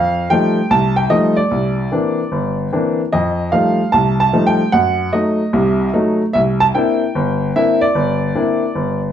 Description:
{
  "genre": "solo jazz",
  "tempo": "149 BPM",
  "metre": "4/4",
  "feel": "swing 65% on 8ths",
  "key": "unclear",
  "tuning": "A4 = 438 Hz",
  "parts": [
    { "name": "warm upright piano", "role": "solo", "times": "0.0-9.1 s", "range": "G1 to A5", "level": "-14 LUFS", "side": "equal", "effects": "none" }
  ],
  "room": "moderate large studio reverb, RT60 0.8 s",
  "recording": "band playing live in one room",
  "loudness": "-14 LUFS",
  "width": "side -9 dB against mid",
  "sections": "0.0-9.1 A section",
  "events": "none",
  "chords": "0.0 F9; 1.5 C9; 3.1 F9; 4.7 F#dim7; 6.3 C9",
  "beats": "0.31 0.71 1.11 | 1.51 1.91 2.32 2.72 | 3.12 3.52 3.92 4.33 | 4.73 5.13 5.53 5.93 | 6.34 6.74 7.14 7.54 | 7.95 8.35 8.75"
}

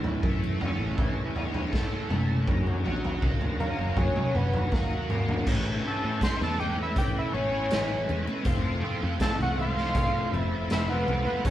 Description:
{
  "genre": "psychedelic rock",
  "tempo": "80 BPM",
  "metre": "4/4",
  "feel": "straight",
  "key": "unclear",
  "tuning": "A4 = 436 Hz",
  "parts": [
    { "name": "overdriven tonewheel organ", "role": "sustained chords", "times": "0.0-11.5 s", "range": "C4 to A#5", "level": "-39 LUFS", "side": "right 2 dB", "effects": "slow rotary speaker, chorus vibrato" },
    { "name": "overdriven electric guitar", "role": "riff", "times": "0.0-11.5 s", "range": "F2 to A4", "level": "-31 LUFS", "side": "equal", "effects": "rotary speaker" },
    { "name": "picked electric bass", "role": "bass", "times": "0.0-11.5 s", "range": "F1 to A2", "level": "-32 LUFS", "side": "equal", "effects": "none" },
    { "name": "raw garage drum kit", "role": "drums", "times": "0.0-11.5 s", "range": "crash cymbal, hi-hat, kick drum, snare drum, toms", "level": "-29 LUFS", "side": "equal", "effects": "none" },
    { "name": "congas", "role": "percussion", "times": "0.4-11.4 s", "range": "none", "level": "-41 LUFS", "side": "left 3 dB", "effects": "none" },
    { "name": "lead with added fifth", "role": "melody", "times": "3.6-11.5 s", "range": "A#4 to C6", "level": "-30 LUFS", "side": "equal", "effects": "chorus" },
    { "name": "organ-like drone", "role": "drone", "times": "7.3-11.5 s", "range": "A1 to E2", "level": "-42 LUFS", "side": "equal", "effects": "none" }
  ],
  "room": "moderate studio reverb, RT60 0.9 s",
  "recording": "band playing live in one room",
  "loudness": "-25 LUFS",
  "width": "side -13 dB against mid",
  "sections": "0.0-5.5 A section; 5.5-11.5 B section",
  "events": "drum fill 4.7-5.5; analog synth lead solo 5.5-11.5",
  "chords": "0.0 A; 2.5 F#; 5.5 Aadd9; 8.5 F",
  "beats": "0.24 0.99 1.73 | 2.48 3.23 3.98 4.72 | 5.47 6.22 6.97 7.71 | 8.46 9.21 9.96 10.71 | 11.45"
}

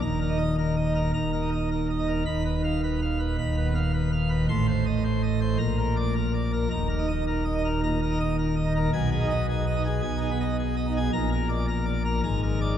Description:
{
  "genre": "classical, organ toccata",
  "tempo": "108 BPM",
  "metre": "4/4",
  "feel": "straight",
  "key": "unclear",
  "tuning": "A4 = 439 Hz",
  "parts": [
    { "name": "pipe organ, plenum", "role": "solo", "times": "0.0-12.8 s", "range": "Eb1 to C6", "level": "-23 LUFS", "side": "equal", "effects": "none" }
  ],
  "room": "wet cathedral reverb, RT60 4.6 s",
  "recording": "dark, warm production",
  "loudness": "-23 LUFS",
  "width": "side -10 dB against mid",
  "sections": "0.0-12.8 A section",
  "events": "none",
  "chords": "0.0 Eb5; 2.3 B/D#; 4.5 Adim; 5.6 Bb; 6.7 Eb5; 8.9 Abm/Cb; 11.1 Bb; 12.2 Bb7/Ab",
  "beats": "| 0.02 0.59 1.15 1.71 | 2.27 2.83 3.38 3.94 | 4.50 5.06 5.61 6.16 | 6.72 7.27 7.82 8.37 | 8.92 9.47 10.02 10.57 | 11.12 11.67 12.23"
}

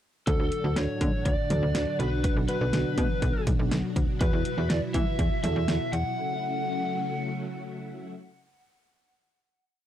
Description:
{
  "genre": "synth-pop",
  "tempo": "122 BPM",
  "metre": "4/4",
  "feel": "straight",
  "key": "F# minor",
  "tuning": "A4 = 440 Hz",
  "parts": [
    { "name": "lead guitar through a small cranked amp", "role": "melody", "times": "0.3-7.6 s", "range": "A4 to F#5", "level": "-32 LUFS", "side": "left 1 dB", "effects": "overdrive" },
    { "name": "FM electric piano with tremolo", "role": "accompaniment", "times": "0.3-5.9 s", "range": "D4 to B4", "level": "-34 LUFS", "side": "right 4 dB", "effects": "none" },
    { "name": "ensemble organ-string", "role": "sustained chords", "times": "0.3-8.1 s", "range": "A2 to F#4", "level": "-32 LUFS", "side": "left 1 dB", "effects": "ensemble chorus" },
    { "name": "slap-like FM bass", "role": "bass", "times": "0.3-6.0 s", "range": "B1 to E3", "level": "-28 LUFS", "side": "equal", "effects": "none" },
    { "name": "pop drum kit", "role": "drums", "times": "0.3-6.0 s", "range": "hi-hat, kick drum, snare drum, toms", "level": "-28 LUFS", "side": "equal", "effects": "none" }
  ],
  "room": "little or no reverb",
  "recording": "dry, gritty hardware recording",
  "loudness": "-24 LUFS",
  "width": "side -11 dB against mid",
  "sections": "0.3-8.1 chorus",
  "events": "none",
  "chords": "0.3 D; 2.0 Bm; 4.2 Esus2; 6.2 F#m7",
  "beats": "| 0.27 0.77 1.26 1.75 | 2.24 2.73 3.22 3.72 | 4.21 4.70 5.19 5.68 | 6.17 6.67 7.16 7.65"
}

